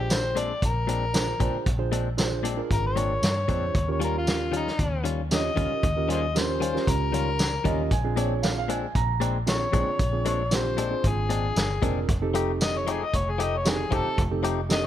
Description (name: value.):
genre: straight-eighth soul blues.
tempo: 115 BPM.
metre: 4/4.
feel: straight.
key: Bb mixolydian.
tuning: A4 = 440 Hz.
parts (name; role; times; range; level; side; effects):
overdriven harmonica; melody; 0.0-14.9 s; Eb4 to Eb5; -29 LUFS; left 3 dB; none.
mellow reed electric piano; accompaniment; 0.0-14.9 s; C4 to Db5; -32 LUFS; right 6 dB; none.
vintage muted fingered electric bass; bass; 0.0-14.9 s; F1 to G2; -29 LUFS; equal; none.
warm soul drum kit; drums; 0.1-14.8 s; hi-hat, kick drum, snare drum, tambourine; -27 LUFS; equal; none.
direct-recorded clean electric guitar; stabs; 0.4-14.6 s; Bb2 to G4; -32 LUFS; left 6 dB; spring reverb.
warm upright piano; second line; 7.6-9.3 s; Db5 to Bb5; -31 LUFS; right 8 dB; slapback echo.
room: light reverb.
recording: none.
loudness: -23 LUFS.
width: side -11 dB against mid.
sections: 0.0-14.9 A section.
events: none.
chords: 0.0 Bb9; 3.7 Eb9; 7.9 Bb9; 12.1 F9.